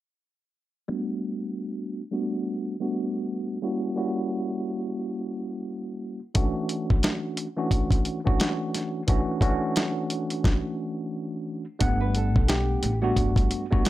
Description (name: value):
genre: hip hop, boom-bap hip-hop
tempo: 88 BPM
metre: 4/4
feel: swing 59% on 16ths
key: unclear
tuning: A4 = 439 Hz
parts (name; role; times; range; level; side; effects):
- tine electric piano; accompaniment; 0.9-13.9 s; E3 to F#5; -28 LUFS; equal; overdrive, medium stereo tremolo, cassette tape, high-pass filter, low-pass filter
- dusty soul sampler-style drum kit; drums; 6.3-13.9 s; hi-hat, kick drum, snare drum; -23 LUFS; equal; none
- upright bass; bass; 11.8-13.4 s; G1 to B1; -26 LUFS; equal; none
- nylon-string guitar; melody; 12.0-13.3 s; F#4 to B4; -32 LUFS; equal; high-pass filter, low-pass filter, tape echo
room: light reverb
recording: none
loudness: -24 LUFS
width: side -15 dB against mid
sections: 0.9-11.8 A section; 11.8-13.9 B section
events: filter sweep on tine electric piano 0.9-11.8; stop 10.4-11.8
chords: 0.9 Gmaj9; 3.6 F#7b9; 6.4 E13sus4; 11.8 Gmaj9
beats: | 0.90 1.58 2.26 2.94 | 3.62 4.31 4.99 5.67 | 6.35 7.03 7.72 8.40 | 9.08 9.76 10.44 11.12 | 11.81 12.49 13.17 13.85